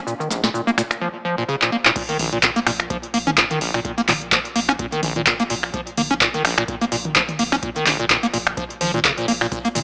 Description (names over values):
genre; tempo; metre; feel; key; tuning
acid house; 127 BPM; 4/4; swing 55% on 16ths; Bb minor; A4 = 439 Hz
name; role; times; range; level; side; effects
acid bass, square; riff; 0.1-9.8 s; Bb1 to Db4; -21 LUFS; equal; tube saturation, wide subtle chorus, sidechain pumping, tape echo
booming analog drum machine; drums; 0.1-9.8 s; crash cymbal, finger snaps, handclaps, hi-hat, shaker, snare drum, toms; -18 LUFS; equal; none
electronic kick drum; drums; 2.0-9.6 s; none; -33 LUFS; equal; none
saturated sub bass; bass; 2.2-9.8 s; Bb1; -37 LUFS; equal; sidechain pumping
room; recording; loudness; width
light reverb, digital ambience; dry, gritty hardware recording, small speaker sound; -17 LUFS; side -35 dB against mid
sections
0.0-2.0 A section; 2.0-9.8 B section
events
filter sweep on acid bass 0.0-2.0; drum fill 1.6-2.0; drop 2.0-9.8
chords
none